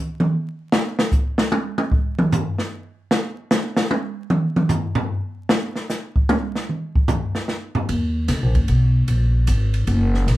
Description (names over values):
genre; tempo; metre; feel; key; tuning
modal jazz; 151 BPM; 3/4; swing 66% on 8ths; unclear; A4 = 442 Hz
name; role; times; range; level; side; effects
open jazz drum kit; drums; 0.2-10.4 s; hi-hat, kick drum, ride cymbal, snare drum, toms; -20 LUFS; equal; none
upright bass; bass; 7.9-10.4 s; Gb1 to Eb2; -16 LUFS; equal; none
room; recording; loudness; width
wet studio reverb, RT60 0.5 s; heard from further back in the room, vinyl crackle; -18 LUFS; side -16 dB against mid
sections
0.0-7.9 A section; 7.9-10.4 B section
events
drum solo 0.0-7.9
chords
none